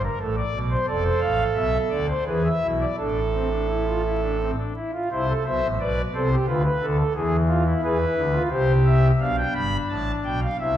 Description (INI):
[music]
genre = classical, baroque-style 3-part fugue for pipe organ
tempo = 87 BPM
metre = 3/4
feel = straight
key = A minor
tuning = A4 = 440 Hz
[part]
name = pipe organ, foundations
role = solo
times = 0.0-10.8 s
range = F1 to B5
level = -20 LUFS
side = equal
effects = none
[sound]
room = wet recital hall reverb, RT60 1.4 s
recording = vinyl crackle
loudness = -20 LUFS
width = side -11 dB against mid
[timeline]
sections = 0.0-5.1 A section; 5.1-9.2 B section; 9.2-10.8 A section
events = none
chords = 0.2 Amadd9; 0.9 F; 1.6 Cmaj13/B; 2.3 E; 3.0 Am; 6.5 Dm; 7.2 E7; 8.5 C; 9.2 G7